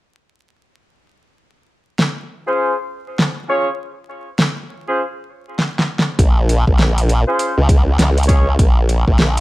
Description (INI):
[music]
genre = glitch hop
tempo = 100 BPM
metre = 4/4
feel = swing 62% on 16ths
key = unclear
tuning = A4 = 439 Hz
[part]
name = pop drum kit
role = drums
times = 2.0-9.4 s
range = hi-hat, snare drum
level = -17 LUFS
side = equal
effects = studio reverb
[part]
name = bright horn section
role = stabs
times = 2.5-8.5 s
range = Db4 to Db5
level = -21 LUFS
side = equal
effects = vintage 12-bit sampler grit, sidechain pumping, low-pass filter, analog delay
[part]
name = formant-sweep wobble bass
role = bass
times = 6.2-9.4 s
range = Bb1 to Db2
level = -14 LUFS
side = equal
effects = chorus, overdrive
[part]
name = electronic kick drum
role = drums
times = 6.2-9.2 s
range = none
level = -14 LUFS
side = equal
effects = studio reverb
[sound]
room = little or no reverb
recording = dry, gritty hardware recording, vinyl crackle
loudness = -14 LUFS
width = side -18 dB against mid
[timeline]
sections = 1.4-6.2 A section; 6.2-9.4 B section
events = drum fill 5.6-6.2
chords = 1.4 Dbmaj7; 6.2 Bbm7